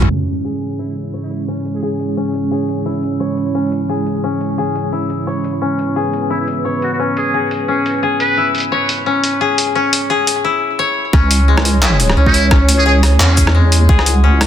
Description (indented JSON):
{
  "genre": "half-time drum and bass",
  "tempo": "174 BPM",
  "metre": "4/4",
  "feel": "swing 56% on 16ths, half-time",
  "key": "C# minor",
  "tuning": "A4 = 440 Hz",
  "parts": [
    { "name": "dark analog pad", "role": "sustained chords", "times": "0.0-14.5 s", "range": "G#3 to F#5", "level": "-21 LUFS", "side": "right 3 dB", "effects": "chorus, vintage 12-bit sampler grit, sidechain pumping" },
    { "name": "koto", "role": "arpeggios", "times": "0.0-14.5 s", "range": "G#3 to C#5", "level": "-18 LUFS", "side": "left 4 dB", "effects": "low-pass filter, tape echo" },
    { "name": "deep soft wobble bass", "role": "bass", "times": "0.0-0.1, 11.1-14.5 s", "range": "C#2 to E2", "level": "-12 LUFS", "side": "equal", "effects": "chorus" },
    { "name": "boom bap sampler-style drum kit", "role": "drums", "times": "0.0-14.5 s", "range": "handclaps, hi-hat, rim click, shaker, toms", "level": "-17 LUFS", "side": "equal", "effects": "overdrive, soft clipping on snare" },
    { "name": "trumpet with metal mute", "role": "melody", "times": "0.8-1.9, 6.3-8.5, 11.8-12.9 s", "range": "E4 to B4", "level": "-21 LUFS", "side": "right 2 dB", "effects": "tape echo" },
    { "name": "electronic kick drum", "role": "drums", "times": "11.1-14.0 s", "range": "none", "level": "-12 LUFS", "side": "equal", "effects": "none" }
  ],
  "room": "light reverb",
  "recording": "dense, heavily limited modern master, low-pass filter",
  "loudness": "-13 LUFS",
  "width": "side -10 dB against mid",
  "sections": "0.1-11.1 A section; 11.1-14.5 B section",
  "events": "filter sweep on koto 0.1-11.1; filter sweep 0.1-11.1; break 10.4-11.1; drop 11.1-14.5",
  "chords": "0.1 C#m",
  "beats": "| 0.10 0.44 0.79 1.13 | 1.48 1.82 2.17 2.51 | 2.86 3.20 3.55 3.89 | 4.24 4.58 4.93 5.27 | 5.62 5.96 6.31 6.65 | 7.00 7.34 7.68 8.03 | 8.38 8.72 9.06 9.41 | 9.75 10.10 10.44 10.79 | 11.13 11.48 11.82 12.17 | 12.51 12.86 13.20 13.55 | 13.89 14.24"
}